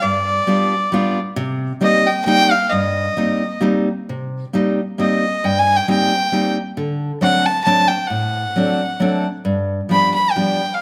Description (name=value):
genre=musette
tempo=134 BPM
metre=3/4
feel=swing 55% on 8ths, rubato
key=C minor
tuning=A4 = 438 Hz
part: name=rich violin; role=melody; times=0.0-10.8 s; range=D5 to B5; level=-20 LUFS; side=equal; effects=none
part: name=fingerpicked steel-string acoustic guitar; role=accompaniment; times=0.0-10.6 s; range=G2 to F4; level=-21 LUFS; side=equal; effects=none
room=moderate recital hall reverb, RT60 1.4 s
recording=close, detailed microphones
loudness=-18 LUFS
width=mono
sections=0.0-4.1 A section; 4.1-10.8 A section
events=none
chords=0.0 G7; 1.4 Cm7; 6.8 D7; 9.5 G7